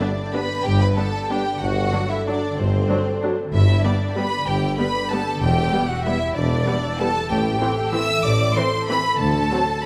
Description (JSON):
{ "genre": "classical, orchestral ballroom waltz", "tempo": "190 BPM", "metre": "3/4", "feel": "uneven beats, rubato", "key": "G major", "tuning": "A4 = 440 Hz", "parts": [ { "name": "warm studio violin section", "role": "melody", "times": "0.0-9.8 s", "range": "C5 to E6", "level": "-27 LUFS", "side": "equal", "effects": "none" }, { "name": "warm symphonic violin section", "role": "second line", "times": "0.0-9.8 s", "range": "C4 to E5", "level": "-31 LUFS", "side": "equal", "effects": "none" }, { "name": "warm symphonic viola section", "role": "accompaniment", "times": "0.0-9.6 s", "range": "E3 to D4", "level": "-30 LUFS", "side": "equal", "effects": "none" }, { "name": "warm French horn section", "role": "sustained chords", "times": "0.0-9.6 s", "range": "E3 to D4", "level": "-37 LUFS", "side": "equal", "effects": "none" }, { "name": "concert harp", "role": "arpeggios", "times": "0.0-9.9 s", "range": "E2 to A5", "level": "-30 LUFS", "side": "equal", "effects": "none" }, { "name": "timpani", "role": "percussion", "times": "0.0-0.1, 9.2-9.6 s", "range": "G2 to D3", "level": "-36 LUFS", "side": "equal", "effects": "none" }, { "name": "clear tuba", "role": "bass", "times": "0.7-9.5 s", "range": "E1 to D2", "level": "-32 LUFS", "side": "equal", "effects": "none" }, { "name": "dark symphonic double bass section", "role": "bass", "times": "0.7-9.5 s", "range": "E1 to D2", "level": "-28 LUFS", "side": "equal", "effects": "none" }, { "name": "warm symphonic cello section", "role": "bass", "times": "0.7-9.5 s", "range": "D2 to A2", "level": "-28 LUFS", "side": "equal", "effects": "none" } ], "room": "moderate scoring stage reverb, RT60 1.7 s", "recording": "none", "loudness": "-21 LUFS", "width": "mono", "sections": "0.0-9.9 A section", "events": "none", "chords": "0.0 G; 1.6 D7/G; 3.5 G; 5.4 Em; 7.3 Am7; 9.2 D7", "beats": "0.00 0.34 | 0.65 0.97 1.31 | 1.62 1.94 2.27 | 2.58 2.89 3.22 | 3.53 3.84 4.17 | 4.47 4.78 5.11 | 5.41 5.72 6.05 | 6.35 6.67 7.00 | 7.30 7.61 7.93 | 8.24 8.56 8.89 | 9.20 9.51 9.84" }